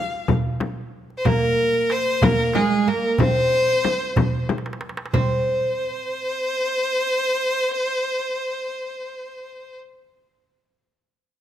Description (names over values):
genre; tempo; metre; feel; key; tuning
Arabic maqam ensemble; 62 BPM (dotted quarters); 6/8; straight; unclear; A4 = 437 Hz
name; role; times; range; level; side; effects
clear violin; melody; 0.0-9.8 s; Ab4 to F5; -22 LUFS; left 1 dB; none
oud; second line; 0.0-10.1 s; Ab3 to F4; -24 LUFS; right 3 dB; none
darbuka; percussion; 0.1-5.4 s; none; -24 LUFS; right 2 dB; none
frame drum; percussion; 0.3-5.4 s; none; -24 LUFS; left 5 dB; none
room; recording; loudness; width
light reverb; close, detailed microphones; -19 LUFS; side -10 dB against mid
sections
0.0-5.1 A section; 5.1-9.0 B section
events
drum fill 4.5-5.1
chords
none